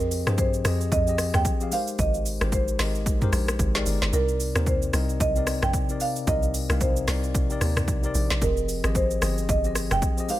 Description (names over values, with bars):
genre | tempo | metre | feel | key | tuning
amapiano | 112 BPM | 4/4 | swing 58% on 16ths | unclear | A4 = 440 Hz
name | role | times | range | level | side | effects
marimba with soft mallets | melody | 0.0-10.4 s | Bb4 to G5 | -28 LUFS | right 2 dB | digital delay
mellow tine electric piano | accompaniment | 0.0-10.4 s | C3 to F5 | -30 LUFS | left 4 dB | none
hollow log drum bass | bass | 0.0-10.0 s | F1 to G2 | -26 LUFS | equal | none
deep house drum kit | drums | 0.0-10.4 s | hi-hat, kick drum, rim click, shaker, snare drum, toms | -26 LUFS | equal | overdrive
room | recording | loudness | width
digital ambience | none | -22 LUFS | side -14 dB against mid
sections
0.0-10.4 A section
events
kick muted 4.1-4.7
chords
0.0 Fm7; 1.7 Abmaj7; 4.1 Cm9; 8.4 Fm7